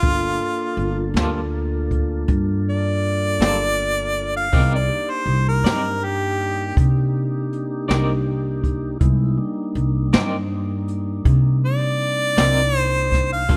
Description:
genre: slow blues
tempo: 54 BPM (dotted quarters)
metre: 12/8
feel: straight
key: unclear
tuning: A4 = 440 Hz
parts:
  - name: clear harmonica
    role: melody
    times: 0.0-13.6 s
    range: F4 to F5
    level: -24 LUFS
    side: equal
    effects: overdrive, slapback echo
  - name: mellow tonewheel organ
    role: sustained chords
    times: 0.0-13.6 s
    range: G3 to A5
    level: -30 LUFS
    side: equal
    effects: slow rotary speaker
  - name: upright bass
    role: bass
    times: 0.0-13.6 s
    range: G1 to C3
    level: -24 LUFS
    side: equal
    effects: none
  - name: jazz brush drum kit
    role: drums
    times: 0.0-13.6 s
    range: hi-hat, kick drum, snare drum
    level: -22 LUFS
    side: equal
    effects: none
  - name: electric guitar through a small old amp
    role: accompaniment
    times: 1.2-13.6 s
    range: G3 to D5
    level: -30 LUFS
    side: equal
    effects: tremolo
room: studio reverb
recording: rough home demo mix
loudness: -20 LUFS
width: mono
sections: 0.0-13.6 A section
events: harmonica solo 0.0-13.6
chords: 0.0 Gm9; 4.5 Cm9

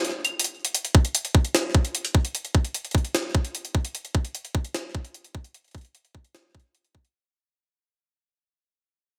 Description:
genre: IDM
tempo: 150 BPM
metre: 4/4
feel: straight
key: none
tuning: none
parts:
  - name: jungle sampler-style drum kit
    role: drums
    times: 0.0-7.1 s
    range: claves, hi-hat, snare drum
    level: -28 LUFS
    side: equal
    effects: digital delay
  - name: electronic kick drum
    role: drums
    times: 0.9-7.0 s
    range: none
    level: -22 LUFS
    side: equal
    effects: none
room: light reverb, digital ambience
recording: bright 1980s-style digital production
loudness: -25 LUFS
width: mono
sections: 0.7-7.1 A section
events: break 0.0-0.7; fade-out 0.7-7.1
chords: none

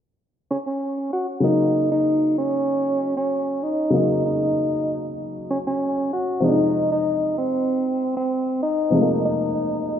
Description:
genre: afrobeats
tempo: 96 BPM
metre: 4/4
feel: straight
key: Eb dorian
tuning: A4 = 439 Hz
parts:
  - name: breathy tenor saxophone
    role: melody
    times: 0.5-10.0 s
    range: C4 to Gb4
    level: -21 LUFS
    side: equal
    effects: tape echo
  - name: warm baby grand piano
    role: accompaniment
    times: 1.4-10.0 s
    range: C3 to Eb4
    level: -23 LUFS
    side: left 1 dB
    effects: none
room: wet plate reverb, RT60 2.2 s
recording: dreamy mix soaked in reverb, low-pass filter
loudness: -19 LUFS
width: side -9 dB against mid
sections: 0.0-1.4 A section; 1.4-10.0 B section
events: none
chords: 0.0 N.C.; 1.4 Ebm7; 6.4 Fm7

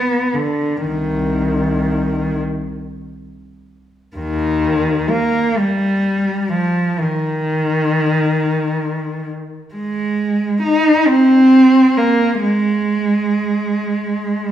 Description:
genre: classical, free, expressive piece for unaccompanied cello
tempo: 30-47 BPM (dotted quarters)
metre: 6/8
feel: rubato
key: C minor, Eb major from 4.2 s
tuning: A4 = 442 Hz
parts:
  - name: rich cello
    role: solo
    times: 0.0-14.5 s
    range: C2 to Eb4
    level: -14 LUFS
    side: equal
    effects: none
room: wet recital hall reverb, RT60 1.6 s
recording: recorded in a church or concert hall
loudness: -14 LUFS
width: side -11 dB against mid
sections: 0.0-4.2 A section; 4.2-14.5 B section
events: none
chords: none

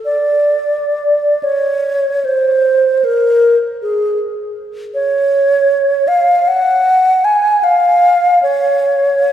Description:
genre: classical, free, expressive piece for unaccompanied alto flute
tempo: 40-54 BPM (dotted quarters)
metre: 6/8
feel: rubato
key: unclear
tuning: A4 = 441 Hz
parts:
  - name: mellow alto flute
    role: solo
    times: 0.1-9.3 s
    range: G#4 to G#5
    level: -11 LUFS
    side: equal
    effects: none
room: wet church reverb, RT60 3.1 s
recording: heard from further back in the room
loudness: -11 LUFS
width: side -10 dB against mid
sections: 0.0-9.3 A section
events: none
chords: none

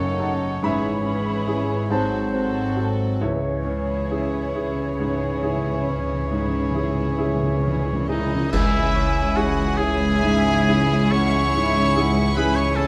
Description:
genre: classical, romantic movement for piano and orchestra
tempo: 44-50 BPM (dotted quarters)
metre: 12/8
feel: rubato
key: C# minor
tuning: A4 = 440 Hz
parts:
  - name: clear grand piano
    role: melody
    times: 0.0-12.9 s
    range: C#2 to B5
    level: -28 LUFS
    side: equal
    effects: none
  - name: warm symphonic violin section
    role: melody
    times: 0.0-12.9 s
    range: G#4 to C#6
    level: -34 LUFS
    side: equal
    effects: none
  - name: clear oboe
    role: second line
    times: 0.0-12.9 s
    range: D#4 to C#5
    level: -30 LUFS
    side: equal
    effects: none
  - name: large flute ensemble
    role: second line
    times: 0.0-12.9 s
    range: C#5 to B5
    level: -35 LUFS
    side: equal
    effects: none
  - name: warm symphonic violin section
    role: second line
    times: 0.0-12.9 s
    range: D#4 to G#4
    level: -36 LUFS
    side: equal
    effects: none
  - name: dark symphonic viola section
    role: accompaniment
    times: 0.0-12.9 s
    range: G#3 to C#4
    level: -34 LUFS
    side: equal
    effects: none
  - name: warm bassoon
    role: accompaniment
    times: 0.0-8.2 s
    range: D#3 to F#3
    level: -36 LUFS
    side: equal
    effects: none
  - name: mellow French horn section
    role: sustained chords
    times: 0.0-12.9 s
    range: E3 to C#4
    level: -32 LUFS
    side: equal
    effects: none
  - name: warm symphonic cello section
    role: bass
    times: 0.0-12.9 s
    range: C#2 to C#3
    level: -30 LUFS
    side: equal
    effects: none
  - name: warm symphonic double bass section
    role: bass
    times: 0.0-12.9 s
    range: F#1 to C#2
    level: -30 LUFS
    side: equal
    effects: none
  - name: timpani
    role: percussion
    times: 3.2-9.7 s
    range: C#3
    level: -32 LUFS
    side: equal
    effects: none
  - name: clash cymbals and concert bass drum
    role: percussion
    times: 8.5-10.2 s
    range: none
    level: -30 LUFS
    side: equal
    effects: none
room: moderate recital hall reverb, RT60 1.3 s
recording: close, detailed microphones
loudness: -22 LUFS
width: mono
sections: 0.0-8.5 A section; 8.5-12.9 A section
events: timpani fill 3.2-8.5; band accent 8.5-9.4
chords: 0.0 D#m7b5/F#; 0.6 C#m/G#; 1.9 G#7b9; 3.2 C#m

